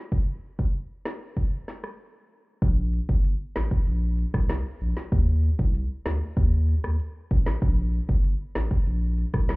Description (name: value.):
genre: dancehall.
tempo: 96 BPM.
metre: 4/4.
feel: straight.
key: unclear.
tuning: A4 = 441 Hz.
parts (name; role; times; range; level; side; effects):
afro-pop drum kit; drums; 0.1-9.6 s; hi-hat, kick drum, rim click, snare drum; -25 LUFS; equal; none.
saturated sub bass; bass; 2.6-9.6 s; G1 to Eb2; -24 LUFS; equal; none.
room: little or no reverb.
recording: heard muffled through a wall, club ambience, EQ.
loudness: -23 LUFS.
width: side -25 dB against mid.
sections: 0.0-2.6 A section; 2.6-9.6 B section.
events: break 2.0-2.6.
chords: none.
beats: | 0.12 0.74 1.37 2.00 | 2.62 3.25 3.87 4.50 | 5.12 5.75 6.37 7.00 | 7.62 8.24 8.87 9.49.